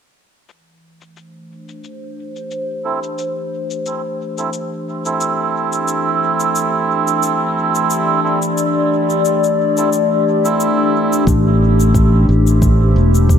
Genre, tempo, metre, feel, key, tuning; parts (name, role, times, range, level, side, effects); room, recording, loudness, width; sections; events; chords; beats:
ambient dub; 89 BPM; 4/4; swing 55% on 16ths; A minor; A4 = 440 Hz
warbly tape-like pad; sustained chords; 0.5-13.4 s; E3 to D5; -18 LUFS; left 3 dB; chorus, built-in reverb
cabasa; drums; 0.5-13.4 s; -28 LUFS; left 7 dB; overdrive, low-pass filter on perc
melodica; stabs; 2.8-11.3 s; C4 to A4; -19 LUFS; right 5 dB; low-pass filter, dub echo
modern bright fingered electric bass; bass; 11.3-13.4 s; E1 to A1; -12 LUFS; equal
electronic kick drum; drums; 11.3-13.4 s; -17 LUFS; equal
moderate scoring stage reverb, RT60 1.8 s, digital ambience; -14 LUFS; side -8 dB against mid
0.5-11.3 A section; 11.3-13.4 B section
filter sweep on ambient pad 0.5-11.3
0.5 Am
| 0.49 1.16 1.83 2.51 | 3.18 3.86 4.53 5.21 | 5.88 6.55 7.23 7.90 | 8.58 9.25 9.93 10.60 | 11.27 11.95 12.62 13.30